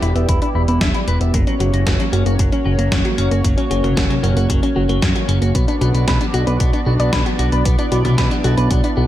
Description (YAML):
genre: synthwave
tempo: 114 BPM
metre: 4/4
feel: straight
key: B minor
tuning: A4 = 441 Hz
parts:
  - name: chorused pulse-width pad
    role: sustained chords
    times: 0.0-9.1 s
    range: A#3 to D5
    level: -22 LUFS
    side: equal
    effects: sidechain pumping
  - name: soft round pluck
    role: arpeggios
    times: 0.0-9.1 s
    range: A#3 to D5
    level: -24 LUFS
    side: left 1 dB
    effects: chorus, digital delay
  - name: clean electric guitar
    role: riff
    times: 0.0-9.0 s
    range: F#3 to E5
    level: -26 LUFS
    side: left 2 dB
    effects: wide subtle chorus, low-pass filter, digital delay
  - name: fat analog bass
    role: bass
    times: 0.0-9.1 s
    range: E1 to F#2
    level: -17 LUFS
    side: equal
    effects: none
  - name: clean 12-bit digital drum machine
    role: drums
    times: 0.0-8.9 s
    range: hi-hat, snare drum, toms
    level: -23 LUFS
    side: left 1 dB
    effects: gated reverb
  - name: electronic kick drum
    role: drums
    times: 0.3-8.8 s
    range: none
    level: -20 LUFS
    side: equal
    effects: none
room: light reverb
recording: none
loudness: -14 LUFS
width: side -13 dB against mid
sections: 0.0-9.1 A section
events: none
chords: 0.0 Em7; 1.3 F#; 5.5 Bm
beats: 0.29 0.81 | 1.34 1.87 2.39 2.92 | 3.44 3.97 4.50 5.02 | 5.55 6.08 6.60 7.13 | 7.66 8.18 8.71